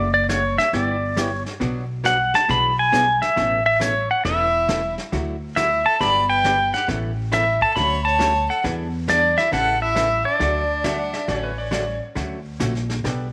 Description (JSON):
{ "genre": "country, western swing", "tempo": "136 BPM", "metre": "4/4", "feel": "swing 66% on 8ths", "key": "D major", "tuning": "A4 = 444 Hz", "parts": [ { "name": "pedal steel guitar", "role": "melody", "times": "0.0-12.0 s", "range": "C#5 to B5", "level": "-21 LUFS", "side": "equal", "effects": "slapback echo" }, { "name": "archtop guitar, miked and amplified", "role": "accompaniment", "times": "0.0-13.3 s", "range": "B2 to A4", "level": "-31 LUFS", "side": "equal", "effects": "none" }, { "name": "upright bass", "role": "bass", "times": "0.0-13.3 s", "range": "E1 to E2", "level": "-29 LUFS", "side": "equal", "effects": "none" }, { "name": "vintage brush drum kit", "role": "drums", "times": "0.3-13.3 s", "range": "brushed snare drum, hi-hat, kick drum, snare drum", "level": "-34 LUFS", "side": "equal", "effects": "none" }, { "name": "clear fiddle", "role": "second line", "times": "4.3-12.0 s", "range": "D4 to D5", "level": "-33 LUFS", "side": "equal", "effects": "none" }, { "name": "clean lap steel guitar", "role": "second line", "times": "10.8-12.0 s", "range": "B4 to F#5", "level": "-31 LUFS", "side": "equal", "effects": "none" } ], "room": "moderate echo chamber reverb, RT60 1.5 s, studio ambience", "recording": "none", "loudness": "-20 LUFS", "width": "mono", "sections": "0.0-12.2 A section; 12.2-13.3 B section", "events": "none", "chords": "0.0 Dmaj7/F#; 0.7 G6; 1.6 Bm; 2.5 E7/B; 3.4 Aadd9; 5.1 Dadd9; 6.0 Gmaj7; 6.9 Aadd9; 7.8 Dmaj7; 8.6 E7; 9.5 A; 10.4 D; 12.2 Dmaj7" }